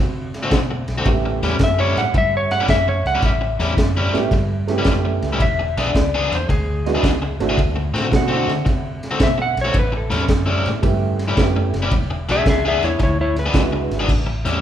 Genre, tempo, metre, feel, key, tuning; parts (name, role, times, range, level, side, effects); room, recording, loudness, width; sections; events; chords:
electric blues shuffle; 110 BPM; 4/4; swing 68% on 8ths; A mixolydian; A4 = 439 Hz
clean lap steel guitar; melody; 0.0-14.1 s; E4 to F#5; -22 LUFS; left 1 dB
vintage muted fingered electric bass; bass; 0.0-14.6 s; E1 to D3; -23 LUFS; equal
crunchy breakbeat drum kit; drums; 0.3-14.5 s; crash cymbal, hi-hat, kick drum, ride cymbal, snare drum; -21 LUFS; equal
crunchy overdriven guitar; riff; 0.4-14.6 s; A2 to G#4; -23 LUFS; left 2 dB
dark upright piano; accompaniment; 1.1-14.1 s; G#3 to G4; -24 LUFS; right 5 dB
moderate large studio reverb, RT60 1.4 s; band playing live in one room; -16 LUFS; side -10 dB against mid
0.0-14.1 A section
electric slide guitar solo 0.0-14.1
0.0 D7; 1.1 A7; 5.4 E7; 7.6 D7; 9.7 A7; 11.9 E7; 14.1 A7